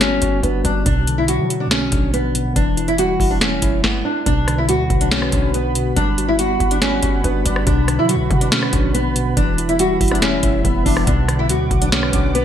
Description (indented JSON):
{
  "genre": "hip hop, trap",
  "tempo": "141 BPM",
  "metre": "4/4",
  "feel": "half-time",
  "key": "B minor",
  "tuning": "A4 = 444 Hz",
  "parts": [
    { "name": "nylon-string guitar", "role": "melody", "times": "0.0-12.4 s", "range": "B3 to F#4", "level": "-20 LUFS", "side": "equal", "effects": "wide subtle chorus, low-pass filter" },
    { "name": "mellow tine electric piano", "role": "accompaniment", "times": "0.0-12.4 s", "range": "B2 to F#4", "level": "-22 LUFS", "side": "equal", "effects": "slow stereo tremolo, low-pass filter" },
    { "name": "hard-hitting 808-style bass", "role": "bass", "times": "0.0-12.4 s", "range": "E1 to F#3", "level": "-23 LUFS", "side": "equal", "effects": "none" },
    { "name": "booming analog drum machine", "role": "drums", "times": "0.0-12.4 s", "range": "hi-hat, kick drum, rim click, snare drum", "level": "-19 LUFS", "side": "equal", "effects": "gated reverb" },
    { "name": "dark analog pad", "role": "sustained chords", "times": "4.5-12.4 s", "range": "G3 to D6", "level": "-28 LUFS", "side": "right 1 dB", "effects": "chorus" }
  ],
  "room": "moderate plate reverb, RT60 1.0 s",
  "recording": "bright 1980s-style digital production",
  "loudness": "-15 LUFS",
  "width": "side -9 dB against mid",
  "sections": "0.0-4.3 A section; 4.3-12.4 B section",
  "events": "none",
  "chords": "0.0 Gmaj7; 0.9 Bm; 2.6 Em; 4.3 Bm; 6.0 Gmaj7; 7.7 Bm; 9.4 Emadd9; 11.1 Bm",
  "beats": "0.01 0.43 | 0.86 1.28 1.71 2.14 | 2.56 2.99 3.41 3.84 | 4.26 4.69 5.11 5.54 | 5.96 6.39 6.82 7.24 | 7.67 8.09 8.52 8.94 | 9.37 9.79 10.22 10.65 | 11.07 11.50 11.92 12.35"
}